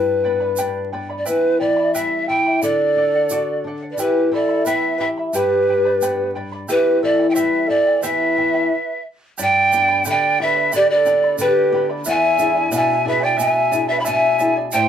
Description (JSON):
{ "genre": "andean folk, Andean ensemble", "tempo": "89 BPM", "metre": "2/4", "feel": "straight", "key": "E minor", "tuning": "A4 = 440 Hz", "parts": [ { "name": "reedy pan flute", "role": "melody", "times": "0.0-14.9 s", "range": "B4 to B5", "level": "-17 LUFS", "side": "right 1 dB", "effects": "none" }, { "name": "charango", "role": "accompaniment", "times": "0.0-14.9 s", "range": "E4 to B5", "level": "-27 LUFS", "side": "equal", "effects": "none" }, { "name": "flamenco guitar", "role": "accompaniment", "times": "0.0-14.9 s", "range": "E2 to G#4", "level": "-24 LUFS", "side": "left 2 dB", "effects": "none" }, { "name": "egg shaker", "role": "percussion", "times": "0.6-14.9 s", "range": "none", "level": "-30 LUFS", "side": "right 4 dB", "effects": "none" }, { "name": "breathy bright large quena", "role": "second line", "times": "2.6-14.9 s", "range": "G4 to G#5", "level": "-23 LUFS", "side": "right 1 dB", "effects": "none" } ], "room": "moderate small room ambience, RT60 0.5 s", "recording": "band playing live in one room, vinyl crackle", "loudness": "-15 LUFS", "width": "side -9 dB against mid", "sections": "0.0-9.4 A section; 9.4-14.9 B section", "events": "stop 8.7-9.4", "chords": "0.0 G; 1.3 Em; 2.6 D; 4.0 Em; 5.3 G; 6.7 Em; 9.4 G; 12.1 E7" }